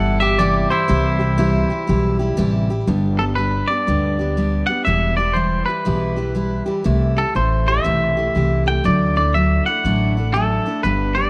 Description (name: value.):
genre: honky-tonk and classic country.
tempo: 121 BPM.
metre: 4/4.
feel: swing 64% on 8ths.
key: G major.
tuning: A4 = 440 Hz.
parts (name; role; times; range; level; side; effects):
twangy electric guitar; melody; 0.0-11.3 s; E4 to G5; -23 LUFS; equal; none.
picked steel-string acoustic guitar; accompaniment; 0.0-11.3 s; E2 to G4; -23 LUFS; equal; none.
upright bass; bass; 0.0-11.3 s; E1 to D2; -23 LUFS; equal; none.
room: light reverb, small room reverb.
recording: none.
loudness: -18 LUFS.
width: mono.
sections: 0.0-2.9 A section; 2.9-10.8 B section.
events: none.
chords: 0.0 C; 2.9 G; 4.9 Em; 6.9 C6; 8.8 Dadd9.